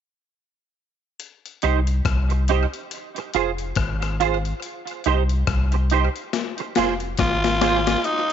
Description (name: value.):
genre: roots reggae.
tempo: 70 BPM.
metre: 4/4.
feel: swing 59% on 16ths.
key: C minor.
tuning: A4 = 440 Hz.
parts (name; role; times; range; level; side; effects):
breakbeat sampler-style drum kit; drums; 1.2-8.3 s; hi-hat, kick drum, rim click, snare drum; -26 LUFS; left 7 dB; tape echo.
semi-hollow electric guitar; accompaniment; 1.6-7.8 s; Eb4 to C5; -25 LUFS; right 12 dB; ensemble chorus, tape echo.
warm sub bass; bass; 1.6-8.0 s; F1 to C2; -22 LUFS; left 1 dB; none.
breathy tenor saxophone; melody; 7.2-8.3 s; Eb4 to F4; -20 LUFS; equal; tape echo.
room: light reverb, digital ambience.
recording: 1960s-style stereo with parts hard left and right, nothing above 7.7 kHz.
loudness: -19 LUFS.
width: side -9 dB against mid.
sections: 1.2-8.0 A section.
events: drum fill 6.3-8.0.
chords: 1.2 Cm; 2.9 Fm; 4.6 Cm; 6.3 Fm.